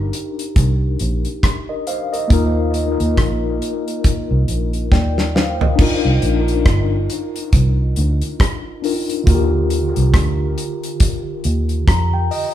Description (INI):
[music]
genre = lovers rock reggae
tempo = 69 BPM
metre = 4/4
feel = swing 59% on 16ths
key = C minor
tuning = A4 = 438 Hz
[part]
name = mellow tine electric piano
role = accompaniment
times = 0.0-12.5 s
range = D3 to Bb5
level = -21 LUFS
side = left 2 dB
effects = medium stereo tremolo, tape echo
[part]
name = vintage muted fingered electric bass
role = bass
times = 0.0-12.3 s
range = G1 to F2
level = -18 LUFS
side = equal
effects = tube saturation
[part]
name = damped 70s drum kit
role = drums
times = 0.1-12.5 s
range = crash cymbal, hi-hat, kick drum, rim click, snare drum, toms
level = -17 LUFS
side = equal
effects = none
[sound]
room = moderate large studio reverb, RT60 0.9 s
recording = band playing live in one room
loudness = -15 LUFS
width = side -12 dB against mid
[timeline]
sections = 0.0-5.8 A section; 5.8-12.5 B section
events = drum fill 4.9-5.8; tine electric piano fill 11.4-12.5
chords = 0.0 Cm7; 2.3 Ebsus2; 5.8 Cm11; 9.3 Ebmaj7